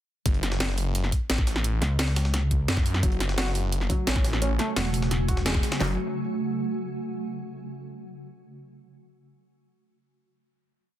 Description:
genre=dark technical drum and bass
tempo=173 BPM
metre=4/4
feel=straight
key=F# minor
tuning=A4 = 440 Hz
part: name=snarling distorted saw bass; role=bass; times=0.3-6.0 s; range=F#1 to F#2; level=-26 LUFS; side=equal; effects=distortion, sidechain pumping
part: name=breakbeat sampler-style drum kit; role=drums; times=0.3-5.8 s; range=hi-hat, snare drum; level=-36 LUFS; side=equal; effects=high-pass filter on hats, high-pass filter on snare
part: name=drum and bass drum kit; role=drums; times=0.3-5.9 s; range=handclaps, kick drum, snare drum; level=-25 LUFS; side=equal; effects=none
part: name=drum and bass drum kit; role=drums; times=0.3-5.8 s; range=hi-hat, snare drum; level=-29 LUFS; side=equal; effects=overdrive
part: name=pulsing pluck wobble bass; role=bass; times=1.8-2.7, 4.8-5.6 s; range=E1 to C#2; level=-25 LUFS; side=equal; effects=chorus
part: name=swarming drone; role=sustained chords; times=3.9-6.0 s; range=C#3 to F#4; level=-31 LUFS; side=right 2 dB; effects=built-in reverb, sidechain pumping
part: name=felt-muted upright piano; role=arpeggios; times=3.0-6.0 s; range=F#3 to F#4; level=-32 LUFS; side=equal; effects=sidechain pumping, tape echo
room=little or no reverb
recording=dense, heavily limited modern master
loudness=-23 LUFS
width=side -12 dB against mid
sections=0.3-5.8 drop; 5.8-7.2 final chord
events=drop 0.3-5.8; band accent 5.5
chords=0.3 F#m; 5.8 N.C.

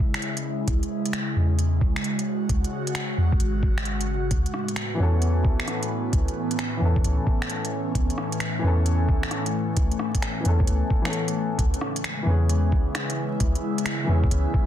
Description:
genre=future garage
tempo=132 BPM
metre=4/4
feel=swing 66% on 16ths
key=C# minor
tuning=A4 = 440 Hz
part: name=airy breathy pad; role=sustained chords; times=0.0-14.7 s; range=A2 to F#4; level=-28 LUFS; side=equal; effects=chorus, phaser, sidechain pumping
part: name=organic electronic drum kit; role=drums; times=0.1-14.4 s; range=finger snaps, hi-hat, rim click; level=-31 LUFS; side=equal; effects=soft clipping on snare
part: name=soft 808-style bass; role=bass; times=0.7-14.5 s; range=G#1 to E2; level=-23 LUFS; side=equal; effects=sidechain pumping
part: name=electronic kick drum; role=drums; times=0.7-14.7 s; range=none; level=-23 LUFS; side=equal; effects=none
part: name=dark upright piano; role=accompaniment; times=4.9-14.7 s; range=E3 to A4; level=-30 LUFS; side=left 2 dB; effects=sidechain pumping, ping-pong delay
room=light reverb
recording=dense, heavily limited modern master, vinyl crackle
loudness=-22 LUFS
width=side -11 dB against mid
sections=0.0-11.6 A section; 11.6-14.7 B section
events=none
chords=0.0 C#m; 4.3 Aadd9/C#; 11.6 C#m7

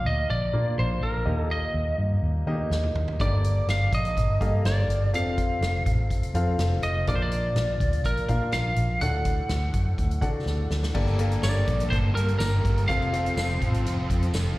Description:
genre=piano-driven pop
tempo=124 BPM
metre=4/4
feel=straight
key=G minor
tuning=A4 = 440 Hz
part: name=lightly driven lead guitar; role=melody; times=0.0-13.8 s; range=Bb4 to F#5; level=-29 LUFS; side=right 1 dB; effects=slapback echo
part: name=clear upright piano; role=accompaniment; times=0.0-14.6 s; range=G2 to F#5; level=-32 LUFS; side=left 2 dB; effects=slapback echo
part: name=vintage muted fingered electric bass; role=bass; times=0.1-14.5 s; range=F1 to Eb3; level=-25 LUFS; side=equal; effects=none
part: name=natural country drum kit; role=drums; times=2.7-14.5 s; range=crash cymbal, hi-hat, kick drum, snare drum, toms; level=-30 LUFS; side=equal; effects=none
part: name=crunchy overdriven guitar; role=riff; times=10.9-14.6 s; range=G2 to A4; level=-34 LUFS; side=right 4 dB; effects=slapback echo
part: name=warm studio string section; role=sustained chords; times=11.0-14.6 s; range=F3 to C4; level=-37 LUFS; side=left 1 dB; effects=none
part: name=tambourine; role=percussion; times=11.4-14.5 s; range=none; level=-39 LUFS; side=left 2 dB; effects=none
room=studio ambience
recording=live gig heard through the venue's PA, recital hall reverb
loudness=-22 LUFS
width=side -18 dB against mid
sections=0.0-10.9 A section; 10.9-14.6 B section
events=drum fill 2.7-3.2, 10.5-10.9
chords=0.0 Bb; 1.3 Eb; 3.2 Gmadd9; 5.1 F; 7.1 Bb; 9.0 D; 10.9 Gmadd9; 12.9 F

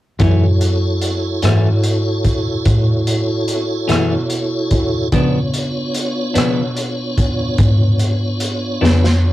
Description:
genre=slow blues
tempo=49 BPM (dotted quarters)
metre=12/8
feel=straight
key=F# minor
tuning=A4 = 440 Hz
part: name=clean electric guitar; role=accompaniment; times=0.2-9.1 s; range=F#2 to D4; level=-16 LUFS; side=left 2 dB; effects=tremolo
part: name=tonewheel organ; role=sustained chords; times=0.2-9.3 s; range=B3 to C#5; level=-21 LUFS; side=right 1 dB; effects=slow rotary speaker, overdrive, chorus vibrato
part: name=vintage muted fingered electric bass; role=bass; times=0.2-9.3 s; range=E#2 to C#3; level=-17 LUFS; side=equal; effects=none
part: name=crunchy breakbeat drum kit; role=drums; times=0.2-9.2 s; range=hi-hat, kick drum, rim click, snare drum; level=-19 LUFS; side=equal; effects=none
room=moderate booth ambience, RT60 0.2 s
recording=rough rehearsal-room recording, warm saturation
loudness=-14 LUFS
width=side -15 dB against mid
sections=0.2-9.3 A section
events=drum fill 8.8-9.3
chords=0.2 F#m7; 5.1 C#7b9

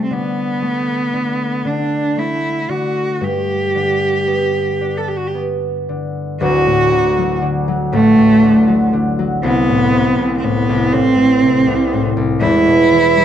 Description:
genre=celtic folk, Celtic slow air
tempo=37-41 BPM (dotted quarters)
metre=6/8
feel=rubato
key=unclear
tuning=A4 = 440 Hz
part: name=clear cello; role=melody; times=0.0-13.2 s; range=A3 to A4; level=-15 LUFS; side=right 1 dB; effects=none
part: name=concert harp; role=accompaniment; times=0.0-13.2 s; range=D1 to D4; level=-17 LUFS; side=left 1 dB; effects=none
room=moderate recital hall reverb, RT60 1.5 s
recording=dark, warm production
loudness=-13 LUFS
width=side -10 dB against mid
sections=0.0-6.4 A section; 6.4-13.2 B section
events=none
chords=0.1 D5; 3.2 G; 6.4 D; 9.4 Amadd9/C; 12.4 E5

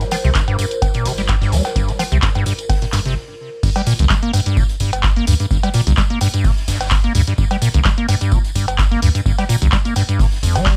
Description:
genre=acid house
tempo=128 BPM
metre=4/4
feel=swing 54% on 16ths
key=G minor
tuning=A4 = 440 Hz
part: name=acid bass, square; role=riff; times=0.0-10.8 s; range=G1 to Bb3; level=-21 LUFS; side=equal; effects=overdrive, analog chorus, sidechain pumping, tape echo
part: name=big rock drum kit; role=drums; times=0.0-10.8 s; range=hi-hat, snare drum, tambourine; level=-37 LUFS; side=equal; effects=none
part: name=punchy analog drum machine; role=drums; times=0.0-10.8 s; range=cowbell, crash cymbal, handclaps, hi-hat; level=-25 LUFS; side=equal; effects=none
part: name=tambourine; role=percussion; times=0.0-10.8 s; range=none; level=-34 LUFS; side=equal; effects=none
part: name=warbly tape-like pad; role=texture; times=0.0-3.2 s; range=F4 to C5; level=-32 LUFS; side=equal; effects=chorus, built-in reverb, sidechain pumping
part: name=warm sub bass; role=bass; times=0.2-10.8 s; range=G1 to D2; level=-21 LUFS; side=equal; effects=sidechain pumping
part: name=electronic kick drum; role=drums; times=0.4-10.8 s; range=none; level=-20 LUFS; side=equal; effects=none
room=light reverb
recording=none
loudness=-17 LUFS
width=mono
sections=0.0-3.6 A section; 3.6-10.8 B section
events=stop 3.2-3.6; drop 3.6-10.8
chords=0.0 Gm

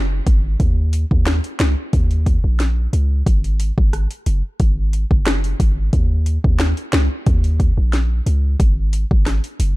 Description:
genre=dancehall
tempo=90 BPM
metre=4/4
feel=straight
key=Eb minor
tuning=A4 = 440 Hz
part: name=warm 808-style bass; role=bass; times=0.0-9.8 s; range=Gb1 to Eb2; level=-17 LUFS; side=equal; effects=none
part: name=afro-pop drum kit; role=drums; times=0.3-9.8 s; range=finger snaps, hi-hat, kick drum, rim click, snare drum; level=-18 LUFS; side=equal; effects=overdrive
room=digital ambience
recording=dark, warm production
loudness=-15 LUFS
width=side -20 dB against mid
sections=0.0-9.8 A section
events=none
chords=none

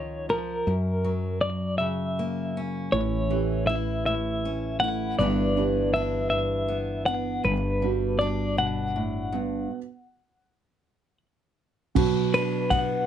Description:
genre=acoustic folk-pop ballad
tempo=53 BPM (dotted quarters)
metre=6/8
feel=straight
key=unclear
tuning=A4 = 440 Hz
part: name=clean electric guitar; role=melody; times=0.0-13.1 s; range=A#4 to F#5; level=-28 LUFS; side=left 1 dB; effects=tremolo, slapback echo
part: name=fingerpicked steel-string acoustic guitar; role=accompaniment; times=0.0-13.1 s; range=F#2 to G4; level=-29 LUFS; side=left 2 dB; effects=none
part: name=woody fretless electric bass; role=bass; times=0.0-9.7 s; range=G1 to F#2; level=-30 LUFS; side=equal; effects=none
part: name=felt-muted upright piano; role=arpeggios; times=2.9-13.1 s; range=E3 to G4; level=-30 LUFS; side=right 11 dB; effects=none
part: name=unplugged drum kit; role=drums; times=12.0-12.9 s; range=crash cymbal, kick drum, ride cymbal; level=-28 LUFS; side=equal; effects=none
room=light reverb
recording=nothing above 11.0 kHz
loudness=-24 LUFS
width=side -10 dB against mid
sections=0.0-12.0 A section; 12.0-13.1 B section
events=stop 9.7-12.0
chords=0.0 C#; 0.7 F#; 2.9 A7; 5.2 Em7/G; 7.4 Gmaj7; 9.7 N.C.; 12.0 Bm

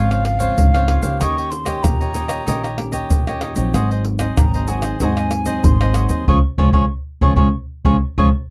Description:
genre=samba and choro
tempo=95 BPM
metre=4/4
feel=straight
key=Db major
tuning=A4 = 439 Hz
part: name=breathy mellow wooden flute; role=second line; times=0.0-8.3 s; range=F5 to Db6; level=-26 LUFS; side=equal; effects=slapback echo
part: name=cavaquinho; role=accompaniment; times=0.0-8.3 s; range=Eb4 to F5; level=-28 LUFS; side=equal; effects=none
part: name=nylon-string guitar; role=accompaniment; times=0.0-8.3 s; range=Ab2 to G4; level=-25 LUFS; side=equal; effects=none
part: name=upright bass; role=bass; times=0.0-8.3 s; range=Ab1 to Eb2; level=-22 LUFS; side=equal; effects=none
part: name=egg shaker, pandeiro, tamborim and surdo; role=percussion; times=0.1-8.3 s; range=none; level=-22 LUFS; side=equal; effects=none
room=little or no reverb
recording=dry, close 1970s-style studio recording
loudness=-18 LUFS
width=mono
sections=0.0-8.5 A section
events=flute solo 0.0-8.5; band accent 6.3-8.5; drum fill 8.0-8.5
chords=0.0 Dbmaj7; 1.2 Eb7; 3.7 Ab7; 6.3 Db

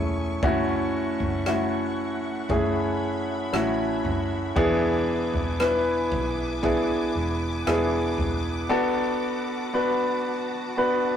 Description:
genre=pop ballad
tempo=58 BPM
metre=4/4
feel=straight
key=unclear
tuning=A4 = 442 Hz
part: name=warm concert grand piano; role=accompaniment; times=0.0-11.2 s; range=E3 to B4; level=-24 LUFS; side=equal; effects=none
part: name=warm studio string section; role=sustained chords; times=0.0-11.2 s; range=A3 to D6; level=-35 LUFS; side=left 1 dB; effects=none
part: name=vintage muted fingered electric bass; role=bass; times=0.0-8.7 s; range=E1 to B1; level=-32 LUFS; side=equal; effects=none
part: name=natural country drum kit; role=drums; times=0.4-8.4 s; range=kick drum, rim click, toms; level=-31 LUFS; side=right 1 dB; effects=none
room=moderate stone room reverb, RT60 1.2 s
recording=rough rehearsal-room recording, tube saturation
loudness=-23 LUFS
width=side -9 dB against mid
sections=0.0-11.2 A section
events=none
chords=0.4 F#m7; 4.6 E7; 8.7 D6

